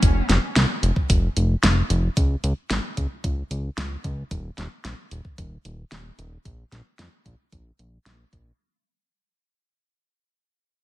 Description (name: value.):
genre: synthwave.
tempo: 112 BPM.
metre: 4/4.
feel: straight.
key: unclear.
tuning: A4 = 440 Hz.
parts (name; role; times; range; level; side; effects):
fat analog bass; bass; 0.0-8.5 s; Eb1 to F2; -22 LUFS; equal; none.
electronic kick drum; drums; 0.0-8.4 s; none; -22 LUFS; equal; studio reverb.
pop drum kit; drums; 0.0-8.4 s; hi-hat, snare drum; -24 LUFS; equal; studio reverb.
room: light reverb, digital ambience.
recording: none.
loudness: -20 LUFS.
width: side -16 dB against mid.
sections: 0.0-8.6 A section.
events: fade-out 0.0-8.6; filter sweep on analog synth bass 0.0-8.6.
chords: none.